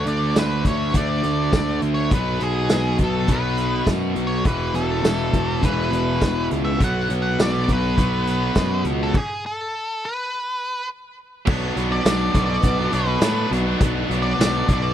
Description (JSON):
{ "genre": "classic rock", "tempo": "102 BPM", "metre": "4/4", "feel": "straight", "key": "B minor", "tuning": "A4 = 442 Hz", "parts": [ { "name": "octave-fuzz lead guitar", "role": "melody", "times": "0.0-14.9 s", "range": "G#4 to F#5", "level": "-26 LUFS", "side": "equal", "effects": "distortion" }, { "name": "tight distorted guitar", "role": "riff", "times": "0.0-14.9 s", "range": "E2 to D4", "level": "-24 LUFS", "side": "right 1 dB", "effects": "distortion" }, { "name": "fuzz picked electric bass", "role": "bass", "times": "0.0-14.9 s", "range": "E1 to A2", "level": "-23 LUFS", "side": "equal", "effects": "overdrive" }, { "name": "vintage drum kit", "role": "drums", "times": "0.1-14.8 s", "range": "crash cymbal, hi-hat, kick drum, snare drum, tambourine", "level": "-22 LUFS", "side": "equal", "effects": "none" } ], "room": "little or no reverb", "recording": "none", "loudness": "-18 LUFS", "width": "side -10 dB against mid", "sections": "0.0-11.5 A section; 11.5-14.9 B section", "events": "stop 9.1-11.5", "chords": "0.0 D5; 2.1 B5; 4.5 E5; 6.8 B5; 9.1 N.C.; 11.5 Bm" }